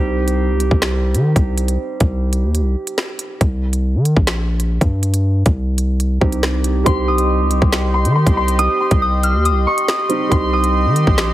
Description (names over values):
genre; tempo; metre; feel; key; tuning
hip hop, drill; 139 BPM; 4/4; half-time; C phrygian; A4 = 435 Hz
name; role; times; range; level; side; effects
warm baby grand piano; accompaniment; 0.0-3.4, 6.2-11.3 s; G3 to G4; -22 LUFS; right 3 dB; none
long sustained 808-style bass; bass; 0.0-11.3 s; Bb1 to Eb3; -17 LUFS; equal; none
drill drum kit; drums; 0.3-11.3 s; finger snaps, hi-hat, kick drum, rim click, snare drum; -17 LUFS; equal; none
Celtic harp; melody; 6.9-11.3 s; C6 to Eb6; -20 LUFS; equal; tape echo
soft synth bell; second line; 6.9-11.3 s; C6 to F6; -24 LUFS; left 4 dB; chorus, phaser, tape echo
sweeping resonant pad; sustained chords; 6.9-11.3 s; G4 to C6; -25 LUFS; equal; chorus
room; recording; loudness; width
light reverb, digital ambience; heavily compressed radio sound, multiband compression; -14 LUFS; side -14 dB against mid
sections
0.0-6.9 A section; 6.9-11.3 B section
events
none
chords
0.0 Cm